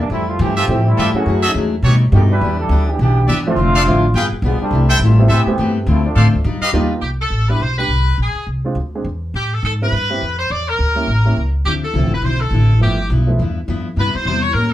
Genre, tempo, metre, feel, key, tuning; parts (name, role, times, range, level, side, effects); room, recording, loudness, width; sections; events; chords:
jazz; 208 BPM; 4/4; swing 60% on 8ths; C major; A4 = 440 Hz
warm trombone section; second line; 0.0-6.4 s; D3 to B4; -21 LUFS; right 1 dB
picked steel-string acoustic guitar; accompaniment; 0.0-6.9, 11.7-14.7 s; G2 to B4; -21 LUFS; left 3 dB
upright bass; bass; 0.0-14.7 s; F1 to B2; -16 LUFS; equal
brilliant trumpet section; stabs; 0.6-6.7 s; F4 to G5; -19 LUFS; equal
warm baby grand piano; accompaniment; 0.7-13.4 s; F3 to Ab4; -22 LUFS; right 2 dB
edgy saxophone section; melody; 7.0-14.7 s; G4 to D5; -20 LUFS; left 1 dB
wet studio reverb, RT60 0.5 s; band playing live in one room; -13 LUFS; side -13 dB against mid
0.0-7.0 A section; 7.0-14.7 B section
trombone section solo 0.0-7.0
0.1 Fmaj9; 1.3 F#m9; 1.8 B7b13; 2.4 Em7; 3.6 Dm7; 4.1 G7b9; 4.7 C6; 5.3 Am9; 5.9 Dm7; 6.5 G7alt; 7.0 Cmaj7(no3); 8.2 Bb9; 9.3 Am7; 10.5 Em7b5; 11.1 A7b9; 11.7 Dm9; 12.8 G13; 14.0 Cmaj7